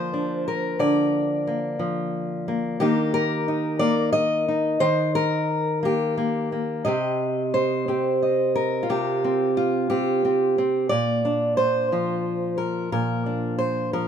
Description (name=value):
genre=folk, solo fingerstyle acoustic guitar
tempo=60 BPM (dotted quarters)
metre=6/8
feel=straight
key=C minor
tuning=A4 = 440 Hz
part: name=fingerpicked steel-string acoustic guitar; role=solo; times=0.0-14.1 s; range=Bb2 to Eb5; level=-21 LUFS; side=equal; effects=none
room=light reverb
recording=minimal, uncompressed stereo recording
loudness=-21 LUFS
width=side -8 dB against mid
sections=0.0-6.9 A section; 6.9-14.1 B section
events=none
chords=0.0 Bb/D; 2.8 Eb; 6.9 Cm; 10.9 Bb